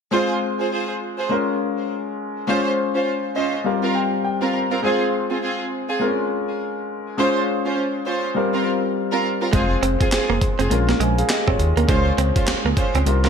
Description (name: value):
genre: R&B, new jack swing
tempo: 102 BPM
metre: 4/4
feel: swing 61% on 16ths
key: F minor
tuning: A4 = 445 Hz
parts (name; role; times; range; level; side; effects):
- warm concert grand piano; accompaniment; 0.1-13.3 s; G3 to Bb5; -22 LUFS; left 3 dB; lush chorus
- warm studio string section; stabs; 0.1-13.3 s; C4 to C5; -24 LUFS; right 3 dB; digital delay
- direct-recorded clean electric guitar; riff; 9.5-13.3 s; Ab3 to C4; -25 LUFS; right 6 dB; lush chorus
- smooth gliding synth bass; bass; 9.5-13.3 s; F1 to Eb2; -20 LUFS; equal; none
- breakbeat sampler-style drum kit; drums; 9.5-13.3 s; handclaps, hi-hat, kick drum, snare drum; -22 LUFS; equal; gated reverb
room: moderate plate reverb, RT60 1.5 s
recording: bright 1980s-style digital production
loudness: -18 LUFS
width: side -6 dB against mid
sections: 0.1-13.3 A section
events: grand piano fill 3.1-4.8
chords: 0.1 Fm; 1.3 Bbm7; 2.5 Dbmaj7; 3.7 C7sus4; 4.8 Fm; 6.0 Bbm7; 7.2 Dbmaj7; 8.4 C7sus4; 9.5 Fm; 10.7 Bbm7; 11.9 Dbmaj7